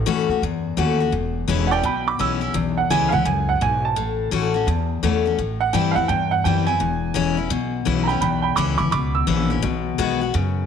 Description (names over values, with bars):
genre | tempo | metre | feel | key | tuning
rockabilly | 169 BPM | 4/4 | swing 63% on 8ths | E major | A4 = 440 Hz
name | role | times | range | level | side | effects
picked steel-string acoustic guitar | accompaniment | 0.0-10.7 s | E2 to F#4 | -22 LUFS | left 8 dB | none
upright bass | bass | 0.0-10.7 s | E1 to G2 | -24 LUFS | right 1 dB | none
clear upright piano | melody | 1.7-9.5 s | D5 to E6 | -22 LUFS | right 8 dB | none
room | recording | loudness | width
moderate echo chamber reverb, RT60 1.7 s, studio reverb | 1960s-style stereo with parts hard left and right | -18 LUFS | side -7 dB against mid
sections
0.0-10.7 A section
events
none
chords
0.0 A6; 1.1 E6; 4.0 A6; 5.4 Am7; 6.8 E6; 9.6 B6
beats
0.07 0.42 0.78 | 1.13 1.48 1.84 2.19 | 2.55 2.90 3.26 3.61 | 3.97 4.32 4.67 5.03 | 5.38 5.74 6.09 6.45 | 6.80 7.16 7.51 7.86 | 8.22 8.57 8.93 9.28 | 9.63 9.99 10.34